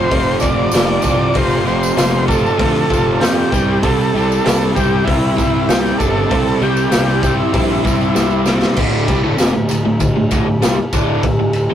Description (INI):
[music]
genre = garage rock duo or trio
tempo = 97 BPM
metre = 4/4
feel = straight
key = D minor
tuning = A4 = 440 Hz
[part]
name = combo organ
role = melody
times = 0.0-8.4 s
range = E4 to D5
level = -19 LUFS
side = right 1 dB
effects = analog delay
[part]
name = overdriven electric guitar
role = riff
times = 0.0-11.7 s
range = D2 to C4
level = -17 LUFS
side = equal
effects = none
[part]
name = fuzz picked electric bass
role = bass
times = 0.0-11.7 s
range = D1 to F2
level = -19 LUFS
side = equal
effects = overdrive, tube saturation
[part]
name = raw garage drum kit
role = drums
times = 0.1-11.7 s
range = crash cymbal, hi-hat, kick drum, ride cymbal, snare drum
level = -18 LUFS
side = equal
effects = none
[part]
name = tambourine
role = percussion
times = 0.4-11.6 s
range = none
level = -31 LUFS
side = right 4 dB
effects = none
[sound]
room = moderate booth ambience, RT60 0.2 s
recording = rough rehearsal-room recording, warm saturation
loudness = -13 LUFS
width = side -10 dB against mid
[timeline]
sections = 0.0-8.8 A section; 8.8-11.7 B section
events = drum fill 8.2-8.8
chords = 0.0 F; 3.5 C; 8.8 D5